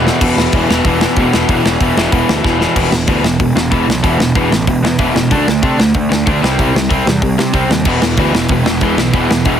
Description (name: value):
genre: punk rock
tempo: 188 BPM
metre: 4/4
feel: straight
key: E minor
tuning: A4 = 440 Hz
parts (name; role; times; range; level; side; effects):
- distorted electric guitar; riff; 0.0-9.6 s; E2 to D4; -17 LUFS; right 10 dB; distortion
- overdriven electric guitar; riff; 0.0-9.6 s; E2 to D4; -16 LUFS; left 10 dB; none
- sludgy distorted guitar; riff; 0.0-0.2, 7.9-9.6 s; E2 to E3; -20 LUFS; equal; overdrive
- fuzz picked electric bass; bass; 0.0-9.6 s; E1 to C3; -17 LUFS; equal; overdrive
- big rock drum kit; drums; 0.1-9.5 s; crash cymbal, hi-hat, kick drum, snare drum; -16 LUFS; equal; none
room: little or no reverb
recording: heavily compressed radio sound, multiband compression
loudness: -11 LUFS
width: side -9 dB against mid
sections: 0.2-2.8 A section; 2.8-9.6 B section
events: drum fill 0.0, 2.4-2.8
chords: 0.2 E5; 5.3 D5; 6.4 C5; 7.9 E5